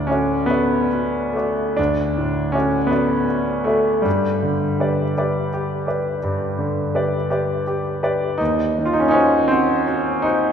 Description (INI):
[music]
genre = classical, romantic nocturne for solo piano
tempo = 45-57 BPM (dotted quarters)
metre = 12/8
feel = rubato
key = unclear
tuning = A4 = 439 Hz
[part]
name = bright concert grand piano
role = solo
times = 0.0-10.5 s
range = D2 to Gb5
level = -17 LUFS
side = equal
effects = none
[sound]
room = wet church reverb, RT60 3.1 s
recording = recorded in a church or concert hall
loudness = -17 LUFS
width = side -8 dB against mid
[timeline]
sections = 0.0-10.5 A section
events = none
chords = 0.0 D; 4.1 G; 8.4 Cdim/Eb